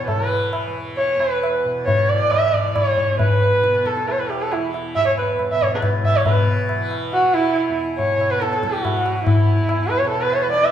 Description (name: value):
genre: indian classical, Hindustani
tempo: 138 BPM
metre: 7/4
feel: straight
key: E raga kafi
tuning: A4 = 440 Hz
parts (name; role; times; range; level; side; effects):
- warm sarangi; melody; 0.0-10.7 s; E4 to E5; -18 LUFS; right 2 dB; none
- tanpura; drone; 0.0-10.7 s; E2 to E3; -29 LUFS; left 1 dB; none
- tabla; percussion; 0.1-10.7 s; none; -22 LUFS; left 2 dB; none
room: wet large studio reverb, RT60 1.4 s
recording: band playing live in one room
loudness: -17 LUFS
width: side -10 dB against mid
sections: 0.0-6.3 A section; 6.3-10.7 B section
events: speeding up 0.0-10.7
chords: none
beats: | 0.08 0.53 0.97 1.42 1.86 2.31 2.75 | 3.19 3.63 4.08 4.51 4.95 5.39 5.82 | 6.26 6.69 7.12 7.55 7.98 8.41 8.84 | 9.27 9.69 10.12 10.54